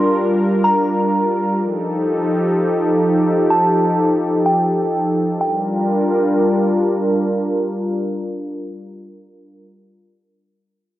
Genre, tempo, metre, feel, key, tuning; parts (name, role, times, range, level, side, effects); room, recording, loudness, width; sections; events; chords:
hip hop; free time; G minor; A4 = 440 Hz
glassy synth bell; melody; 0.0-6.8 s; G5 to C6; -20 LUFS; right 1 dB; chorus, tremolo, low-pass filter, cassette tape, analog delay
warm analog pad; sustained chords; 0.0-9.6 s; F3 to Bb4; -16 LUFS; equal; chorus, cassette tape
moderate spring reverb, RT60 1.3 s; home recording on cassette, low-pass filter; -15 LUFS; side -14 dB against mid
0.0-5.4 A section; 5.4-9.2 B section
filter sweep 0.0-5.4
0.0 Gm7; 1.6 F9; 5.4 Gm7